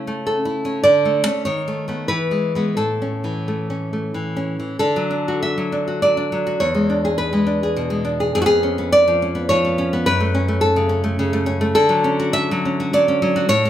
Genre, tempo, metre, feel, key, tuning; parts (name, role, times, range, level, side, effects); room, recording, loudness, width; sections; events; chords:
romantic piece for solo classical guitar; 85-109 BPM; 3/4; rubato; A4 = 438 Hz
nylon-string guitar; solo; 0.0-13.7 s; E2 to E5; -17 LUFS; equal
moderate large studio reverb, RT60 0.9 s; band playing live in one room; -17 LUFS; side -11 dB against mid
0.0-4.8 A section; 4.8-13.7 B section
0.0 A/C#; 0.9 D5; 1.5 B7/D#; 2.1 E; 2.8 A; 4.8 D; 6.6 E7; 8.3 C#7/E#; 10.1 F#m; 11.8 Dmaj7